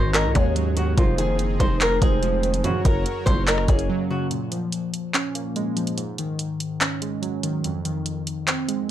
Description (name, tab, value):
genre	hip hop, trap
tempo	144 BPM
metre	4/4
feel	half-time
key	Bb minor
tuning	A4 = 440 Hz
part	flamenco guitar	melody	0.0-4.3 s	F4 to C5	-27 LUFS	left 1 dB	ping-pong delay
part	glassy digital keys	accompaniment	0.0-8.9 s	F2 to Db4	-26 LUFS	right 1 dB	chorus, low-pass filter
part	warm analog pad	sustained chords	0.0-4.3 s	F3 to Db5	-34 LUFS	right 3 dB	chorus, tremolo
part	muted studio string section	stabs	0.0-3.4 s	Ab1 to Gb3	-30 LUFS	right 3 dB	none
part	growling 808-style bass	bass	0.0-3.9 s	F1 to Eb2	-24 LUFS	equal	none
part	gliding portamento lead	second line	0.1-3.9 s	Bb4 to Eb5	-28 LUFS	left 1 dB	chorus, ping-pong delay
part	trap drum kit	drums	0.1-8.8 s	handclaps, hi-hat, kick drum, rim click	-22 LUFS	equal	vintage 12-bit sampler grit
room	light reverb, digital ambience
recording	none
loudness	-20 LUFS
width	side -11 dB against mid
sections	0.0-4.3 A section; 4.3-8.9 B section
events	break 3.9-4.3, 4.3-8.9; filter sweep on synth keys 4.3-8.9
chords	0.0 Ab7sus4; 1.0 Fm7; 2.6 Gb; 4.3 Bbm7; 6.0 Ab7sus4; 7.6 Fm7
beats	0.14 0.56 | 0.97 1.39 1.81 2.23 | 2.64 3.06 3.48 3.89 | 4.31 4.72 5.14 5.56 | 5.97 6.39 6.81 7.22 | 7.64 8.06 8.47 8.89